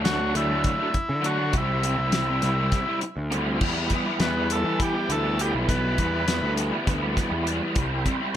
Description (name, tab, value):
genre	psychedelic rock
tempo	202 BPM (eighths)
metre	7/8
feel	straight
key	unclear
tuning	A4 = 442 Hz
part	overdriven combo organ	melody	0.0-6.5 s	E4 to B4	-28 LUFS	left 1 dB	tape echo
part	raw garage guitar	riff	0.0-8.4 s	C3 to E4	-26 LUFS	right 1 dB	overdrive, rotary speaker
part	fuzz picked electric bass	bass	0.0-8.0 s	B1 to E3	-27 LUFS	equal	overdrive
part	damped 70s drum kit	drums	0.1-8.2 s	crash cymbal, hi-hat, kick drum, snare drum	-26 LUFS	left 1 dB	none
room	light reverb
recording	none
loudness	-22 LUFS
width	side -10 dB against mid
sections	0.0-3.6 A section; 3.6-8.4 B section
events	none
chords	0.0 D; 1.5 C; 3.6 Em7; 7.8 C